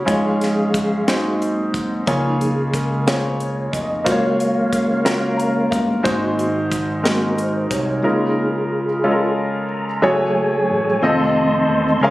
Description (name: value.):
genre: slow gospel.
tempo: 60 BPM (dotted quarters).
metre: 6/8.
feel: straight.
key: Db major.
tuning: A4 = 440 Hz.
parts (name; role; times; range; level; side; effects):
bright baby grand piano; accompaniment; 0.0-12.1 s; Ab2 to Bb5; -20 LUFS; equal; plate reverb.
mellow tonewheel organ; sustained chords; 0.0-12.1 s; Db3 to Db6; -20 LUFS; equal; fast rotary speaker, chorus vibrato, plate reverb.
crisp fusion drum kit; drums; 0.1-7.9 s; hi-hat, kick drum, snare drum; -23 LUFS; equal; none.
fat analog bass; bass; 2.1-12.1 s; Fb1 to Db2; -26 LUFS; equal; none.
room: moderate large studio reverb, RT60 0.8 s.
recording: recorded on a phone in the room, studio reverb.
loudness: -16 LUFS.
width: side -17 dB against mid.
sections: 0.0-10.0 A section; 10.0-12.1 B section.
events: tonewheel organ solo 0.0-10.0, 10.0-12.1; grand piano fill 5.1-6.1.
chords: 0.1 Db/Ab; 1.1 Ab7; 2.1 Db6; 4.1 Gbmaj7; 6.1 Ab7; 8.0 Db6; 10.0 Gbmadd9; 11.0 F7.